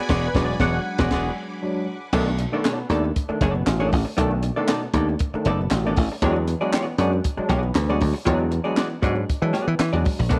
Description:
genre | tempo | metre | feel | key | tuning
funk | 117 BPM | 4/4 | straight | unclear | A4 = 439 Hz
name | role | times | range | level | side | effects
vintage hollow-body jazz guitar | accompaniment | 0.0-10.4 s | B3 to D5 | -29 LUFS | equal | none
string machine, full ensemble | sustained chords | 0.0-2.1 s | F#5 to D6 | -38 LUFS | equal | ensemble chorus
barky tine electric piano | stabs | 0.0-10.4 s | B2 to F#5 | -29 LUFS | equal | overdrive, ensemble chorus, slapback echo
dry thumbed slap bass | bass | 0.1-10.4 s | E1 to E3 | -25 LUFS | equal | none
compact cocktail drum kit | drums | 0.1-10.4 s | crash cymbal, handclaps, hi-hat, kick drum, snare drum | -27 LUFS | equal | none
room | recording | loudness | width
light reverb, studio ambience | none | -22 LUFS | mono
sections
0.0-2.1 A section; 2.1-10.4 B section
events
tine electric piano solo 0.0-2.1; band accent 0.1-2.1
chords
0.0 E9; 2.1 B7#9; 6.2 E9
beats
| 0.10 0.61 1.12 1.63 | 2.14 2.65 3.16 3.67 | 4.18 4.69 5.20 5.71 | 6.22 6.73 7.24 7.75 | 8.27 8.78 9.29 9.80 | 10.31

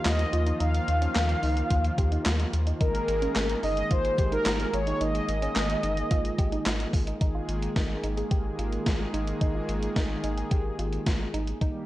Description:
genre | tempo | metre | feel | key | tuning
synth-pop | 109 BPM | 4/4 | straight | unclear | A4 = 441 Hz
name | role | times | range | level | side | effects
mellow synth brass | melody | 0.0-6.9 s | Bb4 to F5 | -29 LUFS | equal | chorus, analog delay
brassy analog pad | sustained chords | 0.0-11.9 s | Eb3 to Ab4 | -33 LUFS | equal | chorus
soft round pluck | arpeggios | 0.0-11.8 s | Db4 to Ab4 | -36 LUFS | right 1 dB | chorus, analog delay
round analog bass | bass | 0.1-11.5 s | G1 to Eb2 | -29 LUFS | equal | none
gated 80s digital drum machine | drums | 0.1-11.7 s | handclaps, hi-hat, kick drum, snare drum | -28 LUFS | equal | gated reverb, gated reverb snare
room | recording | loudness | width
light reverb | dry, gritty hardware recording, cassette tape | -24 LUFS | side -16 dB against mid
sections
0.0-7.2 A section; 7.2-11.6 B section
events
none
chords
0.0 Ebsus2; 2.8 Absus2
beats
0.05 | 0.60 1.16 1.71 2.26 | 2.81 3.36 3.91 4.46 | 5.01 5.56 6.11 6.66 | 7.21 7.76 8.31 8.86 | 9.41 9.96 10.51 11.06 | 11.61

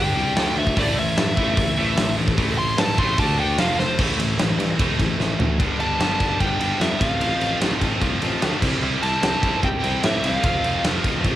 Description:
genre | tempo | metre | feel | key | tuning
hard rock | 149 BPM | 4/4 | straight | A minor | A4 = 440 Hz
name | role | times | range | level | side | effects
smooth overdriven lead guitar | melody | 0.0-10.8 s | C5 to C6 | -25 LUFS | equal | none
crunchy overdriven guitar | riff | 0.0-11.4 s | F2 to D4 | -28 LUFS | left 7 dB | cassette tape
heavy high-gain guitar | riff | 0.0-11.4 s | G2 to D5 | -27 LUFS | left 1 dB | distortion, cassette tape
scooped high-gain guitar | riff | 0.0-11.4 s | F2 to D4 | -26 LUFS | right 7 dB | distortion, cassette tape
picked electric bass | bass | 0.0-11.4 s | E1 to A2 | -27 LUFS | equal | none
big rock drum kit | drums | 0.4-11.3 s | crash cymbal, hi-hat, kick drum, ride cymbal, snare drum, toms | -23 LUFS | equal | cassette tape
room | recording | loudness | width
light reverb | home recording on cassette | -18 LUFS | side -13 dB against mid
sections
0.0-4.0 A section; 4.0-5.6 B section; 5.6-11.4 C section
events
lead electric guitar solo 0.0-4.0; drum fill 3.8, 5.2-5.6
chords
0.4 D5; 0.8 Am; 3.2 D5; 3.6 F5; 4.0 Am; 5.6 G; 7.0 F/A; 8.6 C; 10.4 F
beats
0.37 | 0.77 1.17 1.57 1.98 | 2.38 2.78 3.18 3.58 | 3.99 4.39 4.79 5.19 | 5.60 6.00 6.40 6.81 | 7.21 7.61 8.02 8.42 | 8.82 9.23 9.63 10.03 | 10.44 10.84 11.24

